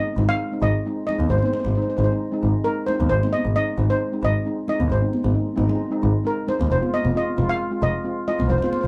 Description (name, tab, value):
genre	calypso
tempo	133 BPM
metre	4/4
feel	straight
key	Ab major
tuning	A4 = 439 Hz
part	steel pan	melody	0.0-8.9 s	Bb4 to F5	-27 LUFS	equal	none
part	steel pan	accompaniment	0.0-8.8 s	Ab3 to F4	-28 LUFS	equal	none
part	bright double bass	bass	0.2-8.9 s	F1 to Eb2	-24 LUFS	equal	none
part	congas	percussion	0.2-8.9 s	none	-32 LUFS	equal	none
room	light reverb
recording	dark, warm production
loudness	-22 LUFS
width	mono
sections	0.0-8.9 A section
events	none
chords	0.0 Ab; 6.7 Fm7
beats	0.40 0.85 | 1.30 1.75 2.21 2.66 | 3.11 3.56 4.01 4.46 | 4.91 5.36 5.81 6.26 | 6.71 7.16 7.61 8.05 | 8.50